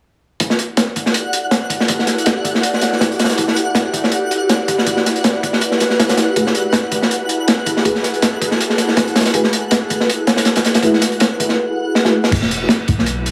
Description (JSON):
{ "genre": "drum and bass, jungle", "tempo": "161 BPM", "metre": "4/4", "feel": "swing 54% on 16ths", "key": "E minor", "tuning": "A4 = 437 Hz", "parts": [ { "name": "ethereal airy pad", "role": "sustained chords", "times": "1.2-11.5 s", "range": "E4 to D5", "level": "-24 LUFS", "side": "equal", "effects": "ensemble chorus, built-in reverb, phaser" }, { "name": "crunchy breakbeat drum kit", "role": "drums", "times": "0.4-13.3 s", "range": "crash cymbal, hi-hat, kick drum, snare drum", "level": "-18 LUFS", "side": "equal", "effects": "high-pass filter on kick, high-pass filter on hats, high-pass filter on cymbals, high-pass filter on snare, high-pass filter on room" }, { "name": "twinkling granular texture", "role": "texture", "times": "1.0-11.6 s", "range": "F#5 to F#6", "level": "-28 LUFS", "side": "equal", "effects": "built-in reverb" }, { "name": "deep mellow chord stab", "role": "stabs", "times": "6.4-12.1 s", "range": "A3 to B4", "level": "-23 LUFS", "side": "equal", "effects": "chorus, phaser, dub echo" }, { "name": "warm 808-style bass", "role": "bass", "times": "12.3-13.3 s", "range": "E1 to B1", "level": "-23 LUFS", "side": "equal", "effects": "none" } ], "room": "moderate plate reverb, RT60 1.5 s, small room ambience", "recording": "heavily compressed radio sound, multiband compression", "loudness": "-16 LUFS", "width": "mono", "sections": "0.4-12.3 A section", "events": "drum fill 12.0-12.3", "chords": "0.4 Em11; 6.4 F#m11; 12.3 E5" }